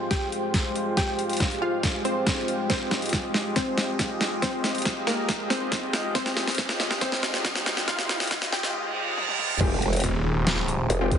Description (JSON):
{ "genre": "heavy wobble dubstep", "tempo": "139 BPM", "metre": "4/4", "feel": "half-time", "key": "F minor", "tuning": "A4 = 440 Hz", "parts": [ { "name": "wide unison pluck", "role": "melody", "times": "0.0-8.7 s", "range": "Bb3 to G5", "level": "-30 LUFS", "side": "left 1 dB", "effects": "tape echo" }, { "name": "supersaw pad", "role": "sustained chords", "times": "0.0-11.2 s", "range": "Ab3 to Eb5", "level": "-30 LUFS", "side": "equal", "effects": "sidechain pumping, low-pass filter" }, { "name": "dubstep drum kit", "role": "drums", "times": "0.1-11.2 s", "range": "crash cymbal, hi-hat, snare drum, toms", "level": "-27 LUFS", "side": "equal", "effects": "overdrive, small room ambience" }, { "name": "electronic kick drum", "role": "drums", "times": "0.1-11.2 s", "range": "none", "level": "-29 LUFS", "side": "equal", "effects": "overdrive, small room ambience" }, { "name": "riser, reverse cymbal and impact", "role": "sound effects", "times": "4.6-11.2 s", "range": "none", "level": "-34 LUFS", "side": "right 2 dB", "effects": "none" }, { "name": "orchestra-hit-like synth stab", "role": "stabs", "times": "9.6-11.1 s", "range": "Ab3 to G4", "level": "-31 LUFS", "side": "left 3 dB", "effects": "built-in reverb, tape echo" }, { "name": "growl bass", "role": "bass", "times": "9.6-11.2 s", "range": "F1", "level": "-24 LUFS", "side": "equal", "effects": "chorus, overdrive" }, { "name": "snarling distorted saw bass", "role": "bass", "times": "10.0-10.9 s", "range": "Eb1", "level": "-25 LUFS", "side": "equal", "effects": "distortion, overdrive" } ], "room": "moderate plate reverb, RT60 1.8 s", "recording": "heavily compressed radio sound, high-pass filter, nothing above 11.0 kHz", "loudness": "-23 LUFS", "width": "side -8 dB against mid", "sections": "0.0-9.6 A section; 9.6-11.2 B section", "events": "build-up 0.0-9.6; drum fill 0.0-8.7, 9.2-9.6; filter sweep on supersaw synth 0.0-9.6; filter sweep 0.0-9.6; reverse cymbal 8.7-9.6; drop 9.6-11.2; impact 9.6-11.2", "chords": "0.0 Fmadd9" }